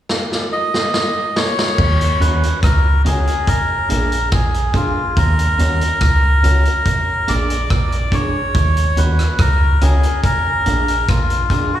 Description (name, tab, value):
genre	roots reggae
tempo	71 BPM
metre	4/4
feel	straight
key	Eb minor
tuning	A4 = 440 Hz
part	vintage drum kit	drums	0.1-11.7 s	crash cymbal, hi-hat, kick drum, rim click, snare drum	-20 LUFS	equal	tape echo
part	melodica	melody	0.5-11.8 s	F4 to Eb5	-19 LUFS	left 1 dB	tape echo, plate reverb, slapback echo
part	deep dub fingered electric bass	bass	1.8-11.7 s	Bb1 to Eb2	-15 LUFS	equal	none
part	electric guitar at the edge of break-up	accompaniment	2.2-11.7 s	Db4 to Bb4	-27 LUFS	right 2 dB	spring reverb, tape echo, plate reverb, slapback echo
room	little or no reverb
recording	live gig heard through the venue's PA, recital hall reverb, small room ambience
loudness	-14 LUFS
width	side -11 dB against mid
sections	0.0-1.8 A section; 1.8-11.8 B section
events	drum fill 0.1-1.8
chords	0.0 N.C.; 1.8 Ebm7; 3.5 Bb7; 5.2 Ebm7; 6.9 Bb7; 8.5 Ebm7; 10.2 Bb7